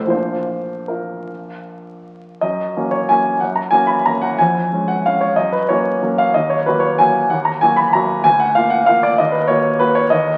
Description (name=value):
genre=classical, piano waltz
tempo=151-204 BPM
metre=3/4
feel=rubato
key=F# major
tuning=A4 = 440 Hz
part: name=warm baby grand piano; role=solo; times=0.0-10.4 s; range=F1 to B5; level=-17 LUFS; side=equal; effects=none
room=wet recital hall reverb, RT60 1.2 s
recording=very old 78 rpm record, vinyl crackle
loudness=-16 LUFS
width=mono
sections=0.0-2.4 A section; 2.4-10.4 B section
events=none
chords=0.1 Bb; 2.4 F#; 4.4 C#/E#; 5.4 F#; 6.4 D#m; 8.3 A#/D; 9.2 D#m